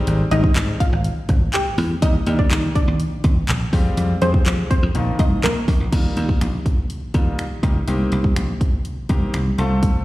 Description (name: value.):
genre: dance-pop.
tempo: 123 BPM.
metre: 4/4.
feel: straight.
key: Eb major.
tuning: A4 = 444 Hz.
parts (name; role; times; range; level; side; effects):
clear concert grand piano; accompaniment; 0.0-10.0 s; Eb3 to A4; -28 LUFS; left 3 dB; sidechain pumping, plate reverb, slapback echo.
dry thumbed slap bass; bass; 0.1-9.9 s; Ab1 to F3; -20 LUFS; equal; sidechain pumping.
house drum kit; drums; 0.1-9.9 s; crash cymbal, finger snaps, handclaps, hi-hat, kick drum; -19 LUFS; equal; none.
wide unison pluck; melody; 0.3-5.8 s; Bb3 to G5; -24 LUFS; equal; sidechain pumping, plate reverb, slapback echo, ping-pong delay.
room: little or no reverb.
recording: live gig heard through the venue's PA, recital hall reverb.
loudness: -17 LUFS.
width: side -17 dB against mid.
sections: 0.0-5.9 A section; 5.9-10.0 B section.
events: drop 0.0-5.9.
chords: 0.0 Abmaj7; 2.0 Ebmaj7; 3.7 Fmadd9; 4.9 Bbsus4; 5.9 Ebadd9; 7.9 Cm7.